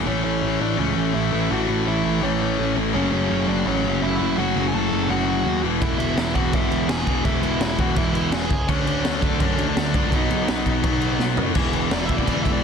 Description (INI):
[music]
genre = punk rock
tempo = 167 BPM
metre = 4/4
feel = straight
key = unclear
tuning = A4 = 440 Hz
[part]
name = sludgy distorted guitar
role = riff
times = 0.0-12.6 s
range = A2 to F#4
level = -26 LUFS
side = right 15 dB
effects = overdrive
[part]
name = tight distorted guitar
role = riff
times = 0.0-12.6 s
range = E2 to D4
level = -25 LUFS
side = left 14 dB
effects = distortion
[part]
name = fuzz picked electric bass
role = bass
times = 0.0-12.6 s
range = E1 to F#2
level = -26 LUFS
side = equal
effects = overdrive
[part]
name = dark smooth lead guitar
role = melody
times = 0.1-12.6 s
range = C#4 to A5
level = -27 LUFS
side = equal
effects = overdrive
[part]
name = raw garage drum kit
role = drums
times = 5.8-12.5 s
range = crash cymbal, kick drum, snare drum, toms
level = -23 LUFS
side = equal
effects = none
[sound]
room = light reverb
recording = dense, heavily limited modern master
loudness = -19 LUFS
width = side -6 dB against mid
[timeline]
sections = 0.1-11.6 A section; 11.6-12.6 B section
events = drum fill 11.2-11.6; lead electric guitar solo 11.6-12.6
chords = 0.1 A; 2.9 F#m; 5.6 E; 8.7 D; 10.1 B; 11.6 E